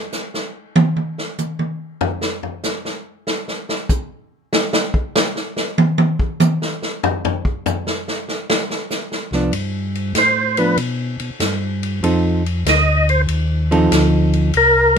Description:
soul jazz organ trio; 96 BPM; 4/4; swing 68% on 8ths; A4 = 440 Hz
swinging big-band drum kit; drums; 0.1-15.0 s; hi-hat, kick drum, ride cymbal, snare drum, toms; -20 LUFS; equal
hollow-body jazz guitar; accompaniment; 9.3-15.0 s; F3 to A4; -16 LUFS; right 2 dB
mellow tonewheel organ; bass; 9.3-15.0 s; C2 to B2; -19 LUFS; left 1 dB; slow rotary speaker
percussive tonewheel organ; melody; 10.2-15.0 s; Bb4 to Eb5; -13 LUFS; equal; overdrive, chorus vibrato, slow rotary speaker
light reverb; minimal, uncompressed stereo recording; -16 LUFS; side -6 dB against mid
0.0-15.0 A section
tonewheel organ solo 0.0-15.0; drum solo 0.0-9.5
0.0 N.C.; 4.5 Csus24; 9.5 G; 12.0 F7

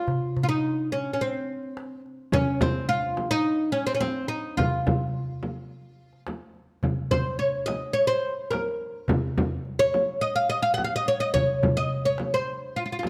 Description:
Arabic maqam ensemble; 106 BPM; 4/4; straight; F maqam hijaz; A4 = 440 Hz
oud; melody; 0.0-13.1 s; C4 to Gb5+25c; -27 LUFS; equal
darbuka; percussion; 0.1-13.1 s; -32 LUFS; equal
frame drum; percussion; 2.3-13.1 s; -31 LUFS; equal
moderate recital hall reverb, RT60 1.4 s; close, detailed microphones; -26 LUFS; mono
0.0-6.8 A section; 6.8-13.1 B section

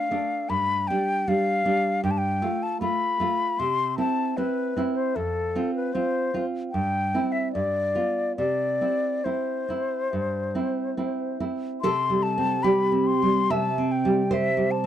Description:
romantic duo for flute and classical guitar; 68-78 BPM; 4/4; rubato; C major; A4 = 440 Hz
mellow concert flute; melody; 0.0-14.9 s; A4 to C6; -26 LUFS; left 3 dB
nylon-string guitar; accompaniment; 0.0-14.9 s; F2 to E5; -25 LUFS; right 2 dB
light reverb; dry, close 1970s-style studio recording; -22 LUFS; side -10 dB against mid
0.0-11.8 A section; 11.8-14.9 B section
0.0 Dm; 0.5 G5; 2.0 G9; 3.6 C; 5.2 F5; 6.7 C/G; 7.5 G7; 8.4 C

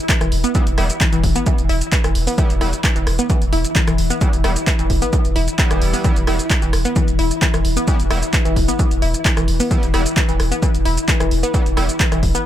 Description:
driving peak-time techno; 131 BPM; 4/4; straight; E minor; A4 = 436 Hz
metallic inharmonic drone; drone; 0.0-12.5 s; E3 to E4; -26 LUFS; left 4 dB; chorus, built-in reverb, sidechain pumping
analog pluck; riff; 0.1-12.4 s; E3 to E4; -23 LUFS; equal; chorus, phaser, sidechain pumping, analog delay
electronic kick drum; drums; 0.1-12.3 s; -18 LUFS; equal
punchy analog drum machine; drums; 0.1-12.4 s; handclaps, hi-hat, rim click, shaker; -22 LUFS; equal; sidechain pumping on hats, sidechain pumping on perc, sidechain pumping on toms
saturated sub bass; bass; 0.2-12.3 s; E1; -20 LUFS; equal; overdrive, sidechain pumping, low-pass filter
sync-sweep polysynth; stabs; 0.5-11.8 s; G3 to E4; -29 LUFS; right 1 dB; chorus, sidechain pumping, analog delay
light reverb; echo-heavy mix; -15 LUFS; side -12 dB against mid
0.0-12.5 A section
0.0 Em

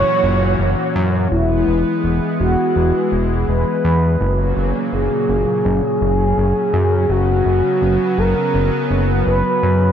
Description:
synthwave; 83 BPM; 4/4; straight; A4 = 440 Hz
expressive synth lead; melody; 0.0-9.9 s; E4 to C#5; -19 LUFS; equal; chorus, digital delay
lush unison pad; sustained chords; 0.0-9.9 s; A#2 to F#4; -20 LUFS; equal; chorus
fat analog bass; bass; 0.0-9.9 s; E1 to F#2; -17 LUFS; equal
moderate plate reverb, RT60 2.6 s; bright 1980s-style digital production; -14 LUFS; side -8 dB against mid
0.0-1.3 A section; 1.3-9.9 B section
0.0 F#7; 1.3 E; 4.2 F#; 7.1 Bsus2/F#

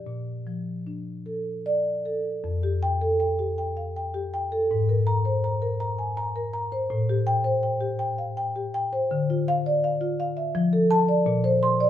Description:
classical, contemporary piece for solo marimba; 81 BPM; 3/4; rubato; F major; A4 = 443 Hz
marimba with soft mallets; solo; 0.0-11.9 s; F2 to C6; -23 LUFS; left 1 dB
light reverb; close, detailed microphones; -23 LUFS; side -11 dB against mid
0.0-2.4 A section; 2.4-11.9 B section
0.1 Bbmaj7; 2.4 Fadd9; 4.7 Abadd9; 6.9 Am7; 9.1 Dmadd9; 10.6 F6; 11.3 Bbadd9

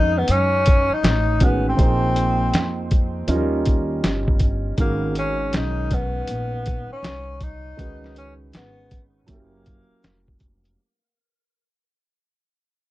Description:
hip hop, jazz-hop; 80 BPM; 4/4; swing 64% on 16ths; Eb minor; A4 = 440 Hz
breathy tenor saxophone; melody; 0.0-10.4 s; Bb3 to Eb4; -24 LUFS; left 1 dB; tape echo
dark grand piano; accompaniment; 0.0-10.8 s; Eb3 to C5; -26 LUFS; right 2 dB
upright bass; bass; 0.0-10.7 s; F1 to Gb2; -25 LUFS; equal
lo-fi sampler-style drum kit; drums; 0.3-10.8 s; hi-hat, kick drum, snare drum; -19 LUFS; equal
light reverb; dark, warm production; -18 LUFS; side -16 dB against mid
0.0-10.8 A section
fade-out 0.0-10.8
0.0 Ebm9; 1.8 Bbsus2; 3.3 Eb7; 4.8 Abm9; 7.8 Db5; 9.3 Gb7b9

